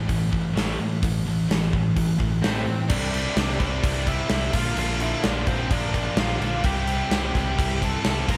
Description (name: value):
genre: quiet-loud alternative rock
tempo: 128 BPM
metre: 4/4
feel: straight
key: unclear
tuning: A4 = 440 Hz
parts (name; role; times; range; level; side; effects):
- high-gain distorted guitar; riff; 0.0-8.4 s; A2 to F4; -33 LUFS; equal; distortion
- thick fuzz guitar; riff; 0.0-8.4 s; A2 to F4; -30 LUFS; equal; distortion, slapback echo
- overdriven picked electric bass; bass; 0.0-8.4 s; A1 to A2; -30 LUFS; equal; none
- big rock drum kit; drums; 0.1-8.4 s; crash cymbal, hi-hat, kick drum, snare drum; -28 LUFS; equal; none
- bluesy overdriven lead guitar; melody; 2.4-8.4 s; C4 to Bb5; -32 LUFS; equal; distortion, analog delay
room: light reverb, studio reverb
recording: none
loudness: -24 LUFS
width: mono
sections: 0.0-2.9 A section; 2.9-8.4 B section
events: none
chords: 0.0 Am; 2.9 Cadd9; 4.5 Bb; 6.6 C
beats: 0.09 0.55 | 1.02 1.49 1.96 2.43 | 2.90 3.37 3.83 4.30 | 4.77 5.24 5.71 6.17 | 6.64 7.11 7.58 8.05